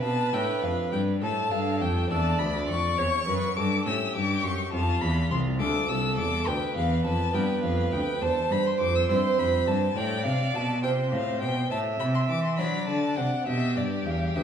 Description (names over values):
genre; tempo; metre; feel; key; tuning
classical, baroque-style sonata movement with continuo; 68 BPM (dotted quarters); 12/8; rubato; C major from 6.5 s; A4 = 438 Hz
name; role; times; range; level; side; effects
warm violin; melody; 0.0-14.4 s; D5 to E6; -30 LUFS; left 5 dB; none
rich violin; second line; 0.0-14.4 s; F4 to E5; -30 LUFS; right 5 dB; none
harpsichord; accompaniment; 0.0-14.4 s; C2 to D5; -30 LUFS; left 3 dB; none
rich cello; bass; 0.0-14.4 s; C2 to F#3; -29 LUFS; right 1 dB; none
room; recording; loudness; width
wet recital hall reverb, RT60 1.5 s; small room ambience; -24 LUFS; side -8 dB against mid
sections
0.0-14.4 A section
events
none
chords
0.0 Dm; 3.0 C#dim/E; 4.7 Dm; 6.5 G7/D; 8.2 C/E; 10.0 F/A; 11.7 D7/A; 13.5 G